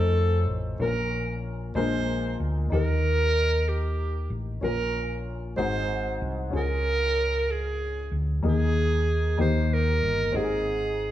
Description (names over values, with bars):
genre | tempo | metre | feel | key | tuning
slow gospel | 63 BPM (dotted quarters) | 6/8 | straight | unclear | A4 = 442 Hz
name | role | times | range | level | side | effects
breathy clarinet | melody | 0.0-11.1 s | G4 to C5 | -28 LUFS | right 2 dB | none
warm upright piano | accompaniment | 0.0-11.1 s | Ab2 to C5 | -30 LUFS | left 4 dB | none
hollow-body short-scale fingered electric bass | bass | 0.0-11.1 s | G1 to F2 | -27 LUFS | equal | none
room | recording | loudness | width
moderate large studio reverb, RT60 1.5 s | band playing live in one room | -24 LUFS | side -12 dB against mid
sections
0.0-11.1 A section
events
none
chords
0.0 F7b13; 0.8 Bbm; 1.8 Bb7; 2.7 Eb; 4.6 Bbm; 5.6 Ab7; 6.5 Db; 8.4 Ebsus4; 9.4 Eb; 10.3 Ab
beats
| 0.80 1.76 | 2.71 3.67 | 4.62 5.58 | 6.53 7.48 | 8.44 9.39 | 10.35